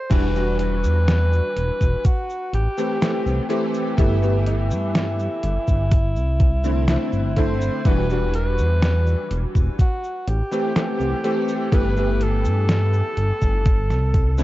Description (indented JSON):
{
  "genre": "vaporwave",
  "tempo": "62 BPM",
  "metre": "4/4",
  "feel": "straight",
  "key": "unclear",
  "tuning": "A4 = 441 Hz",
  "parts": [
    { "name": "breathy alto saxophone", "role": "melody", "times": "0.0-14.4 s", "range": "E4 to C5", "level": "-27 LUFS", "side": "equal", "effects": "tape echo" },
    { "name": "bright electric grand piano", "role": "accompaniment", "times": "0.1-14.4 s", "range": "D3 to G4", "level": "-24 LUFS", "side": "left 1 dB", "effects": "ensemble chorus" },
    { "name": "chorused synth bass", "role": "bass", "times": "0.1-14.4 s", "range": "E1 to G2", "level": "-20 LUFS", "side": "equal", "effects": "tube saturation" },
    { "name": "detuned 8-bit digital drum machine", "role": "drums", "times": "0.1-14.4 s", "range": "cabasa, crash cymbal, hi-hat, snare drum", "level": "-26 LUFS", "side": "equal", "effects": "vintage 12-bit sampler grit" },
    { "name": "electronic kick drum", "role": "drums", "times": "0.1-14.3 s", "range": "none", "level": "-18 LUFS", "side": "equal", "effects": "vintage 12-bit sampler grit" }
  ],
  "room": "light reverb, digital ambience",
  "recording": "dark, warm production, cassette tape, nothing above 7.7 kHz",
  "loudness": "-18 LUFS",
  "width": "side -16 dB against mid",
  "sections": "0.1-14.4 A section",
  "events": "none",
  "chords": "0.1 Em9; 2.0 Am7; 4.0 G69; 5.9 C69; 7.9 Em9; 9.8 Am7; 11.7 G69; 13.7 C5",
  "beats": "| 0.11 1.08 2.05 3.01 | 3.98 4.95 5.92 6.88 | 7.85 8.82 9.79 10.76 | 11.72 12.69 13.66"
}